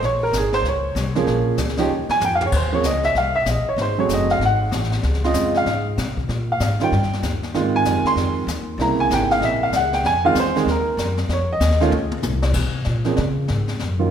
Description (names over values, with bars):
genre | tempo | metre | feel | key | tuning
jazz piano trio | 192 BPM | 4/4 | swing 62% on 8ths | Bb minor | A4 = 439 Hz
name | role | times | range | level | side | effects
warm baby grand piano | melody | 0.0-14.1 s | Db3 to C6 | -20 LUFS | right 2 dB | none
upright bass | bass | 0.0-14.1 s | Gb1 to Db3 | -22 LUFS | left 1 dB | none
jazz brush drum kit | drums | 0.0-14.1 s | brushed snare drum, crash cymbal, hi-hat, kick drum, snare drum, toms | -28 LUFS | left 3 dB | none
room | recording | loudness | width
moderate concert hall reverb, RT60 2.2 s | recorded in a church or concert hall | -18 LUFS | side -8 dB against mid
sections
0.0-2.5 A section; 2.5-12.5 A section; 12.5-14.1 A section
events
grand piano solo 0.0-12.5; drum fill 1.9-2.5, 11.9-12.5; upright bass solo 12.5-14.1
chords
0.0 Bbm9; 1.3 Bbm7; 1.9 Ebsus2; 2.5 Ab69 (rootless); 3.8 Ab7b9; 5.0 Dbmaj7; 6.3 Bb7(no3); 6.9 Eb; 7.5 Ab6; 8.8 C7b9; 10.0 Fm7; 11.3 F7(no3); 12.5 Bbm9